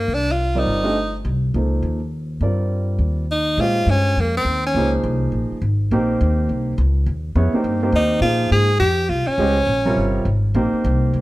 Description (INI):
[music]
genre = modal jazz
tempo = 206 BPM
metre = 4/4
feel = swing 61% on 8ths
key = C dorian, Bb dorian from 3.6 s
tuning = A4 = 436 Hz
[part]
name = edgy tenor saxophone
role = melody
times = 0.0-1.2, 3.3-4.9, 8.0-10.2 s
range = Bb3 to Ab4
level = -19 LUFS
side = equal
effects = none
[part]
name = upright bass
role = bass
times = 0.0-11.2 s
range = G1 to Bb2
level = -20 LUFS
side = equal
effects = none
[part]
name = warm grand piano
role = accompaniment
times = 0.6-11.2 s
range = C3 to Eb5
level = -22 LUFS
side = right 1 dB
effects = none
[sound]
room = light reverb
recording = dark, warm production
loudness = -17 LUFS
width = side -18 dB against mid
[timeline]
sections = 0.0-3.6 A section; 3.6-11.2 B section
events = none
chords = 0.0 Cm11; 3.6 Bbm7; 5.9 Cm7/Bb; 8.2 Bbm7; 10.6 Cm7/Bb